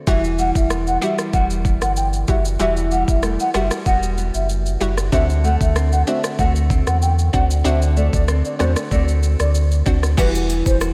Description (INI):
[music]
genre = dancehall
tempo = 95 BPM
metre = 4/4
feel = straight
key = E minor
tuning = A4 = 440 Hz
[part]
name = flamenco guitar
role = arpeggios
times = 0.0-10.9 s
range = D3 to F#4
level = -28 LUFS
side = equal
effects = none
[part]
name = mellow hollow baroque flute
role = melody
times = 0.1-10.8 s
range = B4 to G5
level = -26 LUFS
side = equal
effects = delay
[part]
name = analog pluck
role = accompaniment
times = 0.1-10.8 s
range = G3 to F#4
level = -29 LUFS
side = equal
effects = chorus
[part]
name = sub bass with octave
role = bass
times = 0.1-10.9 s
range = E1 to E2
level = -21 LUFS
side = equal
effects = none
[part]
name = island pop drum kit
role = drums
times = 0.1-10.9 s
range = crash cymbal, hi-hat, kick drum, rim click, shaker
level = -24 LUFS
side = equal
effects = none
[part]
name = egg shaker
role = percussion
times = 10.2-10.9 s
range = none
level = -39 LUFS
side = equal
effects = none
[sound]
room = light reverb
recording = none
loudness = -18 LUFS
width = mono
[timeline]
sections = 0.0-10.2 A section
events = none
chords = 0.1 Emadd9; 5.1 D7; 10.2 Emadd9